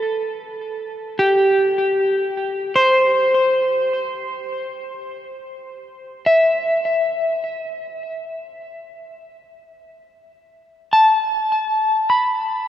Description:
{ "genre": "ambient", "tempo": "free time", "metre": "none", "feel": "none", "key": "unclear", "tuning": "A4 = 439 Hz", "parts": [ { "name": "clean electric guitar", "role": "solo", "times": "0.0-7.4, 10.9-12.7 s", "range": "G4 to B5", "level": "-17 LUFS", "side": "equal", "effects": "ping-pong delay" } ], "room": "wet huge ambient reverb, RT60 7.3 s", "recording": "worn, warbling old tape, cassette tape, warbly pitch drift", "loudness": "-16 LUFS", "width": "side -11 dB against mid", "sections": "0.0-2.4 A section; 2.4-11.7 B section", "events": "none", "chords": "none" }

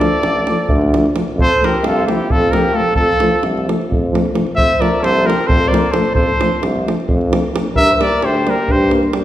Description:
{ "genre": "balkan folk, Balkan brass band", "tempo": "263 BPM (eighths)", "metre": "7/8", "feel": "straight", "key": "unclear", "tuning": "A4 = 438 Hz", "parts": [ { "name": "clear trumpet", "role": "melody", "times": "0.0-8.9 s", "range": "G4 to E5", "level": "-17 LUFS", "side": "equal", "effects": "none" }, { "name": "warm flugelhorn", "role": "second line", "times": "0.0-8.9 s", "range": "E4 to C5", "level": "-23 LUFS", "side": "left 2 dB", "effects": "none" }, { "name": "clear trombone", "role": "accompaniment", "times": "0.0-9.2 s", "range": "F3 to G3", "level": "-23 LUFS", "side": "right 2 dB", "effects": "none" }, { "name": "dark euphonium", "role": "accompaniment", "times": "0.0-9.2 s", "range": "A3 to Bb3", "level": "-24 LUFS", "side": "left 4 dB", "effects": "none" }, { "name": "davul", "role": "percussion", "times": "0.0-9.2 s", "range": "none", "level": "-20 LUFS", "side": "right 1 dB", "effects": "none" }, { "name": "clear tuba", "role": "bass", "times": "0.2-9.1 s", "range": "A1 to G2", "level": "-19 LUFS", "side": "equal", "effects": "none" } ], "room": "wet recital hall reverb, RT60 1.8 s", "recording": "recorded in a church or concert hall", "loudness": "-13 LUFS", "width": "side -13 dB against mid", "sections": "0.0-1.4 A section; 1.4-9.2 B section", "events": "none", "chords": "0.0 Dm; 1.4 F; 7.8 Gm" }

